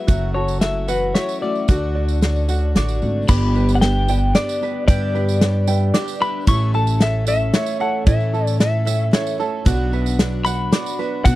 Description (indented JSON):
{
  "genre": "indie folk with a building arrangement",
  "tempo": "113 BPM",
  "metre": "3/4",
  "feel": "straight",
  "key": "unclear",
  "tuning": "A4 = 440 Hz",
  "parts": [
    { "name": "clean electric guitar", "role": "melody", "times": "0.0-11.4 s", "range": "B4 to C#6", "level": "-24 LUFS", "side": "left 3 dB", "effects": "tremolo" },
    { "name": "fingerpicked acoustic archtop guitar", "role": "accompaniment", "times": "0.0-3.3 s", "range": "D3 to A4", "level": "-27 LUFS", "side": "left 2 dB", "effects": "none" },
    { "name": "picked plugged-in twelve-string acoustic guitar", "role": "accompaniment", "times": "0.0-11.4 s", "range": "F#2 to A4", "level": "-28 LUFS", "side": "left 4 dB", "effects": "none" },
    { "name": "tenor ukulele", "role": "arpeggios", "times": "0.0-11.4 s", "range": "E4 to G5", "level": "-27 LUFS", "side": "right 7 dB", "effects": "slapback echo" },
    { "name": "upright bass", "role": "bass", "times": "0.1-11.4 s", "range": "F#1 to B2", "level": "-20 LUFS", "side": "equal", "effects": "none" },
    { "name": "natural country drum kit", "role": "drums", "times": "0.1-11.4 s", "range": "crash cymbal, hi-hat, kick drum, snare drum", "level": "-16 LUFS", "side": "equal", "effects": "none" },
    { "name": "tambourine", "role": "percussion", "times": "0.1-11.4 s", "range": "none", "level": "-35 LUFS", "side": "right 15 dB", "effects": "none" },
    { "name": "dark upright piano", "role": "accompaniment", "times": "3.3-11.4 s", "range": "G1 to G5", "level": "-30 LUFS", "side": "right 8 dB", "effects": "none" }
  ],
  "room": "little or no reverb",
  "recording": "dry, close 1970s-style studio recording",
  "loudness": "-16 LUFS",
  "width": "side -16 dB against mid",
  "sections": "0.0-3.3 A section; 3.3-11.4 B section",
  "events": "none",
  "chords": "0.1 F#m7; 1.7 Dmaj7; 3.3 G; 6.5 A; 9.7 Bm"
}